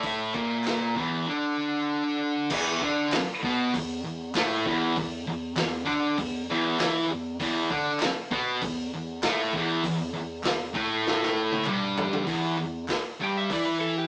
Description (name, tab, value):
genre	garage rock duo or trio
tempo	98 BPM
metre	4/4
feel	straight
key	E minor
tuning	A4 = 439 Hz
part	electric slide guitar	melody	0.0-1.9, 13.2-14.1 s	G4 to G5	-36 LUFS	equal	none
part	thick fuzz guitar	riff	0.0-14.1 s	E2 to E4	-28 LUFS	equal	distortion
part	crunchy breakbeat drum kit	drums	0.0-13.6 s	crash cymbal, hi-hat, kick drum, snare drum, toms	-34 LUFS	equal	none
part	group handclap	percussion	0.3-13.0 s	none	-42 LUFS	equal	none
room	moderate studio reverb, RT60 0.6 s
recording	rough rehearsal-room recording, warm saturation, small speaker sound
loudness	-27 LUFS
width	mono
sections	0.0-2.5 A section; 2.5-12.3 B section; 12.3-14.1 C section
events	drum fill 11.1-12.3; electric slide guitar solo 12.3-14.1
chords	0.0 N.C.; 2.5 E5; 12.3 Em